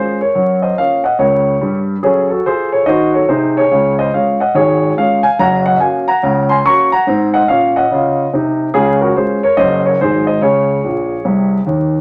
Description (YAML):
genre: jazz, stride piano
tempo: 143 BPM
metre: 4/4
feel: swing 64% on 8ths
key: Db major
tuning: A4 = 440 Hz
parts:
  - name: warm grand piano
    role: solo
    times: 0.0-12.0 s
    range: Gb1 to Db6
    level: -14 LUFS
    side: equal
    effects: none
room: wet studio reverb, RT60 0.7 s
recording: vinyl crackle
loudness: -14 LUFS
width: mono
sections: 0.0-12.0 A section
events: grand piano fill 10.8-12.0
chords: 0.3 Gbmaj7; 2.0 Gbm; 3.7 Db; 5.4 Gb; 7.1 Ab9; 8.7 Db; 9.6 Gb; 10.0 Ab7; 10.4 Db5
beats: | 0.35 0.77 1.19 1.61 | 2.03 2.45 2.87 3.29 | 3.71 4.13 4.55 4.97 | 5.38 5.80 6.22 6.64 | 7.06 7.48 7.90 8.32 | 8.74 9.16 9.58 9.99 | 10.41 10.83 11.25 11.67